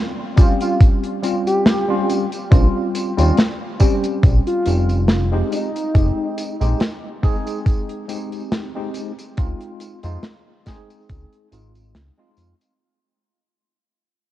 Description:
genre	vaporwave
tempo	70 BPM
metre	4/4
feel	swing 55% on 16ths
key	Bb dorian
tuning	A4 = 442 Hz
part	warm velvety synth lead	melody	0.4-6.7 s	Eb4 to G4	-24 LUFS	equal	chorus, tape echo
part	tine electric piano	accompaniment	0.4-12.5 s	G3 to Ab4	-23 LUFS	equal	medium stereo tremolo, wide subtle chorus, analog delay
part	electronic kick drum	drums	0.4-11.3 s	none	-14 LUFS	equal	none
part	modern studio drum kit	drums	0.4-12.8 s	hi-hat, snare drum, tambourine	-21 LUFS	equal	none
part	chorused synth bass	bass	2.5-12.5 s	F1 to F2	-18 LUFS	equal	none
room	light reverb, small room ambience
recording	worn, warbling old tape, cassette tape, warbly pitch drift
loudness	-16 LUFS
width	side -14 dB against mid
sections	0.0-12.8 A section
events	fade-out 3.7-12.8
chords	0.0 Bbm69 (rootless); 5.5 Fm9 (rootless); 9.4 Dbmaj7

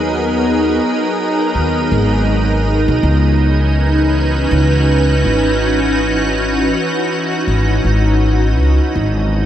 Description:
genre	ambient dub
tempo	81 BPM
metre	4/4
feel	swing 60% on 16ths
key	C# dorian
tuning	A4 = 440 Hz
part	soft additive organ-like pad	sustained chords	0.0-9.5 s	E3 to B4	-15 LUFS	equal	ensemble chorus, built-in reverb
part	upright bass	bass	0.0-9.5 s	G#1 to D#2	-15 LUFS	equal	tube saturation
room	moderate lush hall reverb, RT60 3.1 s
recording	vinyl crackle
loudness	-12 LUFS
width	side -11 dB against mid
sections	0.0-9.5 A section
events	none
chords	0.0 G#m9; 3.0 C#m11; 9.0 G#m9

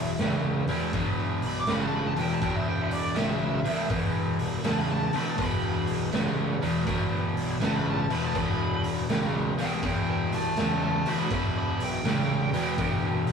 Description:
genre	blues rock power trio and southern rock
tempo	81 BPM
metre	4/4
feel	swing 66% on 8ths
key	E minor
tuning	A4 = 440 Hz
part	nasal lead guitar with a parked wah	second line	0.0-13.3 s	B4 to D6	-33 LUFS	equal	overdrive
part	crunchy overdriven guitar	riff	0.0-13.3 s	E2 to C#3	-27 LUFS	equal	none
part	fuzz picked electric bass	bass	0.0-13.3 s	E1 to E2	-35 LUFS	equal	overdrive
part	raw garage drum kit	drums	0.2-13.3 s	hi-hat, kick drum, snare drum	-30 LUFS	equal	none
room	moderate booth ambience, RT60 0.3 s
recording	rough rehearsal-room recording, studio ambience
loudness	-24 LUFS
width	side -6 dB against mid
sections	0.0-13.3 A section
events	lead electric guitar solo 0.0-13.3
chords	0.0 E5

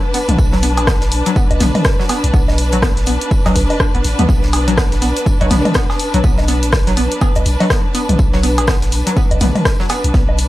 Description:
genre	minimal techno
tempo	123 BPM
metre	4/4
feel	swing 60% on 16ths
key	B minor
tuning	A4 = 440 Hz
part	warm symphonic string section	texture	0.0-10.5 s	D4 to A5	-21 LUFS	equal	sidechain pumping
part	hollow square pluck	riff	0.1-10.2 s	F#3 to D4	-21 LUFS	equal	lush chorus, sidechain pumping, analog delay
part	punchy analog drum machine	drums	0.1-10.5 s	hi-hat, rim click	-21 LUFS	left 1 dB	none
part	tight metal drum kit	drums	0.1-10.5 s	hi-hat, snare drum, tambourine	-31 LUFS	right 1 dB	high-pass filter on hats, high-pass filter on snare, high-pass filter on perc, high-pass filter on room
part	punchy sub bass	bass	0.3-10.5 s	A1 to D2	-17 LUFS	equal	sidechain pumping
part	electronic toms, cowbell and woodblock	percussion	0.3-10.4 s	none	-20 LUFS	equal	analog delay
part	electronic kick drum	drums	0.4-10.3 s	none	-15 LUFS	equal	none
room	studio reverb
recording	dry, gritty hardware recording, lossy compression artefacts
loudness	-12 LUFS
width	side -16 dB against mid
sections	0.0-10.5 A section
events	none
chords	0.0 Bm7

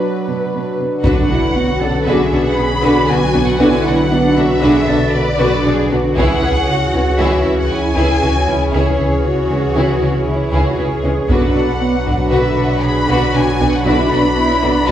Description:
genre	cinematic, hybrid orchestral and electronic film score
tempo	117 BPM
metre	5/4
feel	straight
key	B dorian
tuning	A4 = 441 Hz
part	warm symphonic violin section	melody	0.0-14.9 s	B4 to B5	-21 LUFS	left 2 dB	none
part	brassy analog pad	sustained chords	0.0-14.9 s	D3 to C#5	-20 LUFS	equal	chorus
part	warm symphonic cello section	bass	0.3-14.9 s	B2 to B4	-21 LUFS	equal	none
part	warm symphonic violin section	second line	1.0-14.9 s	G#3 to B4	-22 LUFS	left 2 dB	none
part	dark symphonic viola section	accompaniment	1.0-14.9 s	D3 to D4	-20 LUFS	right 1 dB	none
part	smooth synth bass	riff	1.0-14.9 s	C#2 to B3	-20 LUFS	right 1 dB	none
part	rich symphonic double bass section	bass	1.0-14.9 s	B1 to C#2	-25 LUFS	right 2 dB	none
part	warm sub bass	bass	1.0-14.9 s	B1 to C#2	-24 LUFS	equal	none
part	taiko ensemble	drums	1.0-2.0, 6.2-7.2, 11.3-12.3 s	none	-21 LUFS	equal	none
part	impact	sound effects	1.0-3.6 s	none	-25 LUFS	equal	none
part	felt-muted upright piano	texture	1.8-14.9 s	C#4 to F#5	-28 LUFS	left 1 dB	none
room	wet recital hall reverb, RT60 1.2 s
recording	heard from further back in the room, small room ambience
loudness	-12 LUFS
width	side -10 dB against mid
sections	0.0-1.0 A section; 1.0-14.9 A section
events	impact 1.0-3.6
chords	0.0 Bm; 6.2 C#m; 11.3 Bm

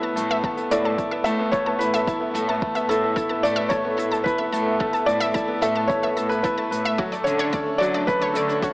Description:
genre	piano and strings electronica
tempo	110 BPM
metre	4/4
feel	straight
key	A major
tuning	A4 = 440 Hz
part	felt-muted upright piano	melody	0.0-8.7 s	A4 to E5	-24 LUFS	equal	shimmer reverb
part	granular cloud pad	sustained chords	0.6-8.7 s	D3 to F#5	-31 LUFS	right 1 dB	built-in reverb, shimmer reverb
part	analog pluck	arpeggios	0.0-8.7 s	F#4 to A5	-29 LUFS	equal	chorus, sidechain pumping, digital delay, shimmer reverb
part	bright baby grand piano	riff	0.0-8.7 s	F#3 to E5	-25 LUFS	equal	shimmer reverb
part	warm studio cello section	bass	0.2-8.6 s	A2 to D3	-30 LUFS	equal	sidechain pumping
part	hi-hat	drums	0.2-8.7 s	none	-40 LUFS	right 2 dB	none
part	electronic kick drum	drums	0.4-8.7 s	none	-31 LUFS	equal	overdrive
room	moderate lush hall reverb, RT60 1.8 s, studio reverb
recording	small speaker sound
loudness	-20 LUFS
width	side -23 dB against mid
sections	0.0-8.7 A section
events	none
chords	0.0 Asus2; 7.0 Dmaj7

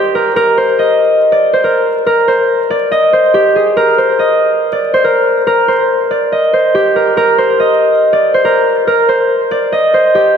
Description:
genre	hip hop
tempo	141 BPM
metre	4/4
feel	half-time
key	C minor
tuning	A4 = 440 Hz
part	concert harp	solo	0.0-10.4 s	G4 to Eb5	-9 LUFS	equal	low-pass filter, ping-pong delay
room	wet plate reverb, RT60 3.7 s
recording	dreamy mix soaked in reverb, vinyl crackle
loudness	-9 LUFS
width	side -7 dB against mid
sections	0.0-10.4 A section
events	none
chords	none

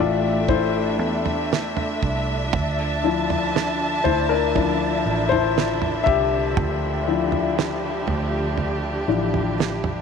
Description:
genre	pop ballad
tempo	60 BPM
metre	4/4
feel	straight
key	D minor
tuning	A4 = 440 Hz
part	warm concert grand piano	accompaniment	0.0-10.0 s	E3 to E5	-23 LUFS	left 9 dB	none
part	warm studio string section	sustained chords	0.0-10.0 s	D3 to A5	-25 LUFS	right 2 dB	none
part	vintage muted fingered electric bass	bass	0.0-10.0 s	A1 to E2	-28 LUFS	right 2 dB	none
part	damped 70s drum kit	drums	0.5-10.0 s	kick drum, snare drum, toms	-26 LUFS	right 6 dB	none
room	light reverb, studio reverb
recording	1960s-style stereo with parts hard left and right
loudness	-19 LUFS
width	side -6 dB against mid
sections	0.0-10.0 A section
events	grand piano solo 0.0-10.0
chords	0.0 Asus4; 2.5 Dmadd9

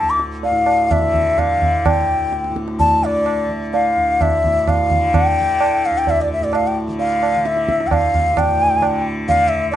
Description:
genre	indian classical, Hindustani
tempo	129 BPM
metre	7/4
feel	straight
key	D raga bhimpalasi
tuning	A4 = 438 Hz
part	mellow bansuri	melody	0.0-9.8 s	D5 to D6	-16 LUFS	left 2 dB	plate reverb
part	tanpura	drone	0.0-9.8 s	D2 to D3	-24 LUFS	equal	none
part	tabla	percussion	0.2-9.8 s	none	-20 LUFS	right 3 dB	none
room	light reverb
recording	nothing above 10.5 kHz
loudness	-15 LUFS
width	side -12 dB against mid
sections	0.0-9.8 A section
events	speeding up 0.0-9.8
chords	none

